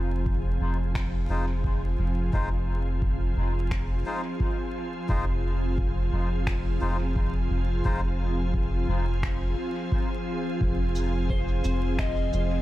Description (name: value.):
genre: ambient dub.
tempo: 87 BPM.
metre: 4/4.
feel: swing 57% on 16ths.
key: F minor.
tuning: A4 = 440 Hz.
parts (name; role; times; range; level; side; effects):
soft additive organ-like pad; sustained chords; 0.0-12.6 s; F3 to Ab4; -32 LUFS; equal; ensemble chorus, built-in reverb.
soft dub sub bass; bass; 0.0-12.6 s; F1; -26 LUFS; equal; none.
electronic kick drum; drums; 0.3-12.1 s; none; -30 LUFS; equal; overdrive.
electronic finger snaps and shaker; drums; 1.0-12.5 s; none; -39 LUFS; left 1 dB; dub echo.
melodica; stabs; 1.3-8.0 s; Ab3 to C5; -37 LUFS; left 3 dB; dub echo.
electric slide guitar; melody; 11.3-12.6 s; C5 to Eb5; -33 LUFS; left 3 dB; dub echo.
vibraphone with hard mallets; arpeggios; 11.6-12.6 s; C4; -34 LUFS; right 1 dB; none.
room: digital ambience.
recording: vinyl crackle.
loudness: -24 LUFS.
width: side -16 dB against mid.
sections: 0.0-12.6 A section.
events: none.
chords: 0.0 Fm.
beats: 0.26 0.95 1.64 | 2.33 3.02 3.71 4.40 | 5.09 5.78 6.47 7.16 | 7.85 8.54 9.23 9.92 | 10.61 11.30 11.99.